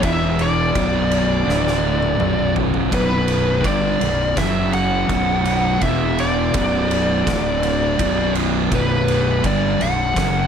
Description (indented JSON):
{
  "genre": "stoner and doom metal",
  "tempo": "83 BPM",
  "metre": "4/4",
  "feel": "straight",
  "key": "B minor",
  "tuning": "A4 = 440 Hz",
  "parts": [
    { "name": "thick fuzz guitar", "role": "riff", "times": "0.0-10.5 s", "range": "B1 to G3", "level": "-23 LUFS", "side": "left 9 dB", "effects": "distortion" },
    { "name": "thick fuzz guitar", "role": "riff", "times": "0.0-10.5 s", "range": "B1 to G3", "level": "-22 LUFS", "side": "right 10 dB", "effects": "distortion" },
    { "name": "fuzz fingered electric bass", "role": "bass", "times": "0.0-10.5 s", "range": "B0 to G1", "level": "-25 LUFS", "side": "equal", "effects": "overdrive" },
    { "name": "oversized low-tuned drum kit", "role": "drums", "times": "0.0-10.3 s", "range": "kick drum, ride cymbal, snare drum, toms", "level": "-24 LUFS", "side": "equal", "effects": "none" },
    { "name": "fuzz lead guitar", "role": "melody", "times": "0.1-10.5 s", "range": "B4 to F#5", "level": "-22 LUFS", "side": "equal", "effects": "wah, distortion, tape echo" }
  ],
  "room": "light reverb, small room reverb",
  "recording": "none",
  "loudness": "-16 LUFS",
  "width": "side -7 dB against mid",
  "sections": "0.0-10.5 A section",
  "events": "drum fill 1.5-2.9",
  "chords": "0.0 E5; 0.8 Bm; 1.5 D5; 2.2 Bm; 4.4 F#5; 5.1 B5; 5.8 E5; 6.5 Bm; 7.3 D5; 8.0 Bm"
}